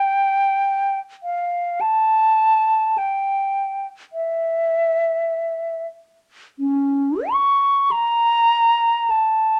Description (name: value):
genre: classical, free, expressive piece for unaccompanied flute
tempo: 41-53 BPM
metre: 4/4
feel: rubato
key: unclear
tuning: A4 = 439 Hz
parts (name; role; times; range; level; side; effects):
- hollow concert flute; solo; 0.0-9.6 s; C#4 to C#6; -19 LUFS; equal; none
room: light reverb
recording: none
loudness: -20 LUFS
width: mono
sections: 0.0-9.6 A section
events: none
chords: none